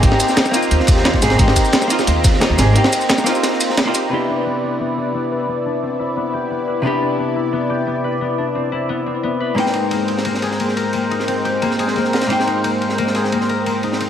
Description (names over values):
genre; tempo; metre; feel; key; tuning
liquid drum and bass; 176 BPM; 4/4; straight; unclear; A4 = 440 Hz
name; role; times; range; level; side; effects
vintage hollow-body jazz guitar; accompaniment; 0.0-14.1 s; Ab2 to G5; -20 LUFS; equal; digital delay
warm analog pad; sustained chords; 0.0-14.1 s; Ab3 to Bb5; -23 LUFS; equal; chorus
upright bass; bass; 0.0-2.7 s; Ab1 to Eb2; -17 LUFS; equal; none
breakbeat sampler-style drum kit; drums; 0.0-4.0 s; hi-hat, ride cymbal, shaker, snare drum; -19 LUFS; right 1 dB; low-pass filter on hats, low-pass filter on snare, low-pass filter on cymbals, low-pass filter on perc
crunchy breakbeat drum kit; drums; 0.0-4.0, 9.6-14.1 s; ride cymbal, snare drum; -24 LUFS; equal; high-pass filter on cymbals, high-pass filter on snare, high-pass filter on room
electronic kick drum; drums; 0.0-2.3 s; none; -15 LUFS; equal; overdrive
concert harp; arpeggios; 4.1-14.1 s; Bb3 to B4; -22 LUFS; left 5 dB; low-pass filter, digital delay
room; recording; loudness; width
moderate lush hall reverb, RT60 1.7 s, small room ambience; none; -15 LUFS; side -9 dB against mid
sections
0.0-4.1 A section; 4.1-14.1 B section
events
drop 0.0-4.1; filter sweep on harp 4.1-14.1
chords
0.0 Abmaj9; 4.1 Cmaj9; 9.6 Abmaj9